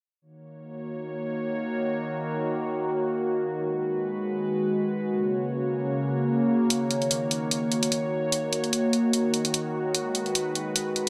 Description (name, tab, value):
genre	heavy wobble dubstep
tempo	148 BPM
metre	4/4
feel	swing 55% on 16ths, half-time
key	Eb minor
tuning	A4 = 439 Hz
part	evolving wavetable pad	sustained chords	0.6-11.1 s	Db3 to Db5	-28 LUFS	equal	chorus, built-in reverb
part	electronic hi-hat	drums	6.7-11.0 s	none	-29 LUFS	equal	small room ambience
room	moderate lush hall reverb, RT60 2.2 s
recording	none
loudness	-27 LUFS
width	mono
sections	0.2-11.1 A section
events	none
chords	0.2 Ebm7; 3.5 Abm7; 5.1 Gb; 6.7 Ebm7; 9.9 Abm7